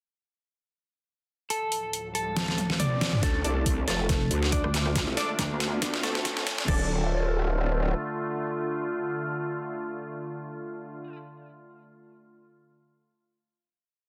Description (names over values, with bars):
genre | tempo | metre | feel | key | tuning
heavy wobble dubstep | 139 BPM | 4/4 | swing 54% on 16ths, half-time | D minor | A4 = 440 Hz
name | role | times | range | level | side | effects
clean electric guitar | melody | 1.5-11.2 s | A3 to D5 | -36 LUFS | equal | delay
evolving wavetable pad | sustained chords | 1.8-10.9 s | D2 to F4 | -37 LUFS | equal | chorus, built-in reverb, sidechain pumping
dubstep drum kit | drums | 1.5-6.8 s | crash cymbal, hi-hat, rim click, snare drum, toms | -32 LUFS | equal | overdrive, high-pass filter on hats, high-pass filter on snare, high-pass filter on toms, high-pass filter on cymbals
riser | sound effects | 2.1-6.7 s | none | -40 LUFS | equal | none
growl bass | bass | 3.2-7.9 s | D1 to D2 | -30 LUFS | equal | chorus, overdrive
electronic kick drum | drums | 3.2-6.8 s | none | -31 LUFS | equal | overdrive
orchestra-hit-like synth stab | stabs | 3.4-11.2 s | D4 to D5 | -38 LUFS | equal | built-in reverb, delay
pulsing pluck wobble bass | bass | 4.1-5.8 s | F1 to D2 | -31 LUFS | equal | chorus, overdrive
room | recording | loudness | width
moderate digital room reverb, RT60 1.0 s, digital ambience | dense, heavily limited modern master, high-pass filter | -28 LUFS | mono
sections
1.5-3.2 intro; 3.2-6.7 build; 6.7-10.1 final chord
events
riser 2.1-3.2, 3.2-6.7; drum fill 2.4-3.2, 3.2-6.7; build-up 3.2-6.7; filter sweep 3.2-6.7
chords
1.5 Dm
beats
| 1.50 1.93 2.37 2.80 | 3.23 3.66 4.09 4.52 | 4.96 5.39 5.82 6.25 | 6.68 7.11 7.55 7.98 | 8.41 8.84 9.27 9.70